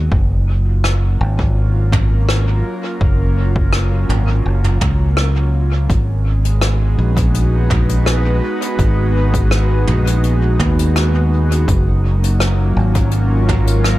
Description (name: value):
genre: ambient dub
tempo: 83 BPM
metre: 4/4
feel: straight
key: unclear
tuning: A4 = 440 Hz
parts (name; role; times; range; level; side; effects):
- airy breathy pad; sustained chords; 0.0-14.0 s; F#3 to B4; -22 LUFS; equal; chorus
- fingered electric bass; bass; 0.0-14.0 s; F#1 to D#2; -14 LUFS; equal; none
- electronic kick drum; drums; 0.1-13.6 s; none; -19 LUFS; equal; overdrive
- soft brush drum kit; drums; 0.8-14.0 s; hi-hat, rim click, toms; -23 LUFS; equal; dub echo
room: small room ambience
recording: none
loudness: -13 LUFS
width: side -16 dB against mid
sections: 0.0-14.0 A section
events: fade-in on analog synth pad 0.0-14.0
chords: 0.1 F#maj7; 5.9 G#m7; 11.7 F#maj7